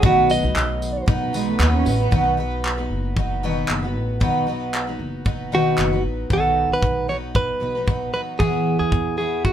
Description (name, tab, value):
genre	acoustic pop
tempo	115 BPM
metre	4/4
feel	swing 55% on 16ths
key	unclear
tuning	A4 = 440 Hz
part	direct-recorded clean electric guitar	melody	0.0-1.0, 5.5-9.5 s	F#4 to D#5	-22 LUFS	right 1 dB	none
part	picked twelve-string acoustic guitar	accompaniment	0.0-9.5 s	B2 to B4	-22 LUFS	equal	none
part	ethereal airy pad	sustained chords	0.0-2.1 s	D#3 to F#4	-34 LUFS	equal	none
part	upright bass	bass	0.0-9.5 s	F#1 to E2	-26 LUFS	equal	none
part	modern studio drum kit	drums	0.0-9.5 s	handclaps, kick drum, tambourine	-23 LUFS	equal	none
part	warm cello	second line	1.3-2.2 s	G#3 to C#4	-25 LUFS	right 7 dB	none
room	light reverb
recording	minimal, uncompressed stereo recording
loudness	-18 LUFS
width	side -10 dB against mid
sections	0.0-2.1 A section; 2.1-6.3 B section; 6.3-9.5 C section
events	none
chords	0.0 B; 8.4 Eadd9